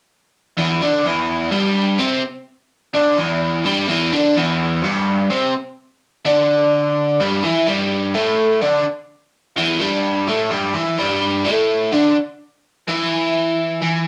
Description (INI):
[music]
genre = rock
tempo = 254 BPM (eighths)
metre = 7/8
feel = straight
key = E minor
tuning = A4 = 441 Hz
[part]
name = biting overdriven guitar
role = solo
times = 0.6-14.1 s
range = E2 to E4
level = -18 LUFS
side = equal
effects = phaser
[sound]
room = wet studio reverb, RT60 0.6 s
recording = none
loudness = -18 LUFS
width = mono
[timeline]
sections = 0.6-13.8 A section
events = none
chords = 0.6 Em; 7.2 G5